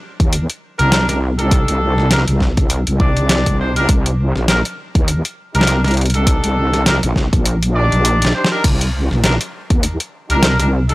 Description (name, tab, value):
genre	glitch hop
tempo	101 BPM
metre	4/4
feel	swing 57% on 16ths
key	C dorian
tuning	A4 = 441 Hz
part	wobble bass	bass	0.2-10.9 s	Bb1 to Eb2	-16 LUFS	equal	chorus, overdrive
part	boom bap sampler-style drum kit	drums	0.2-10.9 s	crash cymbal, hi-hat, snare drum	-18 LUFS	equal	none
part	electronic kick drum	drums	0.2-9.8 s	none	-15 LUFS	equal	none
part	bright horn section	stabs	0.8-10.9 s	D4 to D5	-20 LUFS	equal	sidechain pumping, analog delay
room	digital ambience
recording	dry, gritty hardware recording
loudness	-13 LUFS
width	side -19 dB against mid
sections	0.0-10.9 A section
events	kick drops out 7.5-8.6; drum fill 8.0-8.6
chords	0.0 Cm7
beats	0.33 0.92 | 1.51 2.11 2.70 3.30 | 3.89 4.49 5.08 5.67 | 6.27 6.86 7.46 8.05 | 8.64 9.24 9.83 10.43